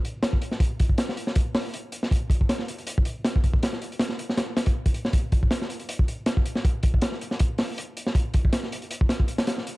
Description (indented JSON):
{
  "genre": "drum and bass",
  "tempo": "159 BPM",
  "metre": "4/4",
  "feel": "swing 54% on 16ths",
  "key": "none",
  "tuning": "none",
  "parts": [
    { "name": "crunchy breakbeat drum kit", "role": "drums", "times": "0.0-9.8 s", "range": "hi-hat, kick drum, snare drum", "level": "-22 LUFS", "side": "equal", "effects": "none" }
  ],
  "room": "little or no reverb",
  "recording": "dark, warm production",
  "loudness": "-22 LUFS",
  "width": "side -20 dB against mid",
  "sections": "0.0-9.8 A section",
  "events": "none",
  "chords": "none"
}